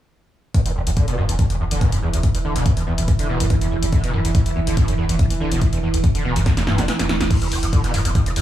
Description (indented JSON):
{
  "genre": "driving peak-time techno",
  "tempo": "142 BPM",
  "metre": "4/4",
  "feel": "straight",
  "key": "unclear",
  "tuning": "A4 = 440 Hz",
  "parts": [
    { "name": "screaming distorted acid line", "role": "riff", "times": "0.5-8.4 s", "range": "E1 to E3", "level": "-23 LUFS", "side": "equal", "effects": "distortion, ensemble chorus, cassette tape, sidechain pumping, digital delay" },
    { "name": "analog drone", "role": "drone", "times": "1.2-8.4 s", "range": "E3 to E4", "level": "-27 LUFS", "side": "right 3 dB", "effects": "chorus, sidechain pumping" },
    { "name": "electronic kick drum", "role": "drums", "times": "0.5-8.2 s", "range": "none", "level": "-18 LUFS", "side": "equal", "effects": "none" },
    { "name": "punchy analog drum machine", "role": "drums", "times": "0.5-8.4 s", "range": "crash cymbal, hi-hat, snare drum", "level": "-27 LUFS", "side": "left 2 dB", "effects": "sidechain pumping on hats, sidechain pumping on cymbals" },
    { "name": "saturated sub bass", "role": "bass", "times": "0.7-8.4 s", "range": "E1", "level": "-25 LUFS", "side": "equal", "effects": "overdrive, sidechain pumping, low-pass filter" }
  ],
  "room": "light reverb",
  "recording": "small room ambience",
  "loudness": "-17 LUFS",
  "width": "side -12 dB against mid",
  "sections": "0.5-7.3 A section; 7.3-8.4 B section",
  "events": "filter sweep on acid bass 0.5-7.3; drum fill 6.5-7.3; kick drops out 6.9-7.3",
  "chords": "0.5 N.C.; 7.3 E5",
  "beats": "| 0.55 0.97 1.39 1.81 | 2.24 2.66 3.08 3.50 | 3.93 4.35 4.77 5.19 | 5.62 6.04 6.46 6.88 | 7.31 7.73 8.15"
}